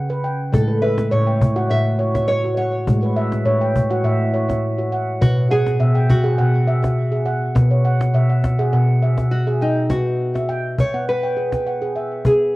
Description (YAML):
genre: world meditative, meditative tuned percussion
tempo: 102 BPM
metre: 4/4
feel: straight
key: unclear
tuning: A4 = 440 Hz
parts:
  - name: handpan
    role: arpeggios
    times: 0.0-12.5 s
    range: A2 to G5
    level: -17 LUFS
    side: equal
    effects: cassette tape, tape echo
  - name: nylon-string guitar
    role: melody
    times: 0.5-12.5 s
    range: D#4 to E5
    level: -22 LUFS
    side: equal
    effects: cassette tape, tape echo
  - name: cajon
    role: percussion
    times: 0.5-12.4 s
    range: none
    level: -21 LUFS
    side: left 1 dB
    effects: none
room: wet booth ambience, RT60 0.3 s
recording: home recording on cassette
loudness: -16 LUFS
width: side -19 dB against mid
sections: 0.0-9.9 A section; 9.9-12.6 B section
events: none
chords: 0.0 N.C.; 0.5 A; 5.2 B5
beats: | 0.53 1.12 1.70 2.29 | 2.87 3.46 4.04 4.63 | 5.21 5.80 6.38 6.97 | 7.55 8.14 8.73 9.31 | 9.90 10.49 11.08 11.67 | 12.26